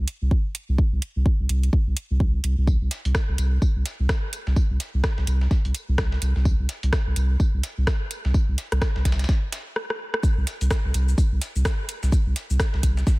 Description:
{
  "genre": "minimal techno",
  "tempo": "127 BPM",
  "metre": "4/4",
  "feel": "swing 60% on 16ths",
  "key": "unclear",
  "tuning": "A4 = 440 Hz",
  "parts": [
    { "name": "saturated sub bass", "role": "bass", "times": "0.0-13.0 s", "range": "C2", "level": "-21 LUFS", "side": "equal", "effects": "sidechain pumping" },
    { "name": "house drum kit", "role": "drums", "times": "0.1-13.2 s", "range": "hi-hat, rim click, shaker", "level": "-30 LUFS", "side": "equal", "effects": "none" },
    { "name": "electronic kick drum", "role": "drums", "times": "0.3-13.2 s", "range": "none", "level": "-22 LUFS", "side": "equal", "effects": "none" },
    { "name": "dusty soul sampler-style drum kit", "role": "drums", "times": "2.7-13.2 s", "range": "hi-hat, snare drum, tambourine", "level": "-38 LUFS", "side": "left 1 dB", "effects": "sidechain pumping on perc, high-pass filter on perc, high-pass filter on snare, sidechain pumping on hats, high-pass filter on hats, high-pass filter on room" }
  ],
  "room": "little or no reverb",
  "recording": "none",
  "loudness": "-21 LUFS",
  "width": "side -23 dB against mid",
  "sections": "0.0-10.2 A section; 10.2-13.2 B section",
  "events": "drum fill 9.8-10.2; stop 9.8-10.2; drop 10.2-13.2",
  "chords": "none",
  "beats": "0.31 | 0.79 1.26 1.73 2.20 | 2.67 3.15 3.62 4.09 | 4.57 5.04 5.51 5.98 | 6.45 6.93 7.40 7.87 | 8.34 8.82 9.29 9.76 | 10.23 10.71 11.18 11.65 | 12.12 12.60 13.07"
}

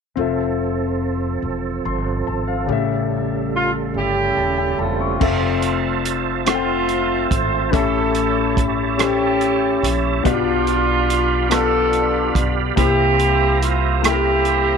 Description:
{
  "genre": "slow gospel",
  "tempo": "48 BPM (dotted quarters)",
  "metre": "6/8",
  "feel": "straight",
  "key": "F major",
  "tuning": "A4 = 444 Hz",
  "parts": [
    { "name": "clear concert grand piano", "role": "accompaniment", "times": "0.2-14.8 s", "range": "A2 to C#6", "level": "-22 LUFS", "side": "left 14 dB", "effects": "none" },
    { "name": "tonewheel organ", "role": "sustained chords", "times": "0.2-14.8 s", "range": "C#3 to B5", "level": "-25 LUFS", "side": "right 11 dB", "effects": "fast rotary speaker, chorus vibrato" },
    { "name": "upright bass", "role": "bass", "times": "0.2-14.8 s", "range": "Eb1 to C2", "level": "-24 LUFS", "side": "equal", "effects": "none" },
    { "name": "mellow horn section", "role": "melody", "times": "3.6-14.8 s", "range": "A3 to C5", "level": "-20 LUFS", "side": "right 2 dB", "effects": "none" },
    { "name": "warm soul drum kit", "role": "drums", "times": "5.2-14.6 s", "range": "crash cymbal, hi-hat, kick drum, rim click", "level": "-22 LUFS", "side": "right 3 dB", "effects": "none" }
  ],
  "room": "light reverb, studio reverb",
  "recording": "1960s-style stereo with parts hard left and right",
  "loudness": "-16 LUFS",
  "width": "side -6 dB against mid",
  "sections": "0.2-5.2 A section; 5.2-14.8 B section",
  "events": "none",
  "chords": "0.2 Fmaj7; 2.7 A7; 5.2 Fmaj7; 7.7 A7; 10.2 G7/B; 12.8 C7",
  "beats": "| 0.17 1.43 | 2.69 3.95 | 5.21 6.47 | 7.73 8.99 | 10.25 11.51 | 12.77 14.03"
}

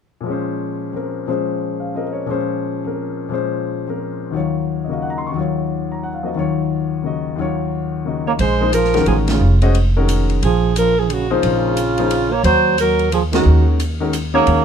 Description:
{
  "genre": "modal jazz",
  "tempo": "177 BPM",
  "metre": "3/4",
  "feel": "swing 62% on 8ths",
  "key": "Bb minor",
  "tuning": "A4 = 440 Hz",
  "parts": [
    { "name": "clear grand piano", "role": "accompaniment", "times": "0.2-14.6 s", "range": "Eb2 to Db6", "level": "-20 LUFS", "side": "left 5 dB", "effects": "none" },
    { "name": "breathy alto saxophone", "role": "melody", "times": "8.3-14.6 s", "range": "F4 to Db5", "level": "-18 LUFS", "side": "right 1 dB", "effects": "none" },
    { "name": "trombone with metal mute", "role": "second line", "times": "8.3-14.6 s", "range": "Db3 to Bb3", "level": "-20 LUFS", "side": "right 8 dB", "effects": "none" },
    { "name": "upright bass", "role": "bass", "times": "8.4-14.6 s", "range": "F1 to Eb2", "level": "-17 LUFS", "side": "equal", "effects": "none" },
    { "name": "open jazz drum kit", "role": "drums", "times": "8.4-14.6 s", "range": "hi-hat, ride cymbal, snare drum", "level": "-28 LUFS", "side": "left 1 dB", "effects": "none" }
  ],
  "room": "light reverb",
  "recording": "dark, warm production",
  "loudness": "-16 LUFS",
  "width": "side -7 dB against mid",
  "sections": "0.3-8.4 A section; 8.4-14.6 B section",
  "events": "band accent 9.2, 13.3",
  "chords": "0.3 Bbm9; 4.3 Ebm9; 8.4 Bbm9; 12.4 Ebm7",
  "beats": "| 0.26 0.60 0.94 | 1.28 1.61 1.95 | 2.29 2.63 2.97 | 3.31 3.65 3.99 | 4.33 4.67 5.01 | 5.35 5.68 6.02 | 6.36 6.70 7.04 | 7.38 7.72 8.06 | 8.40 8.73 9.07 | 9.41 9.75 10.09 | 10.42 10.76 11.10 | 11.44 11.77 12.11 | 12.45 12.79 13.12 | 13.46 13.79 14.13 | 14.47"
}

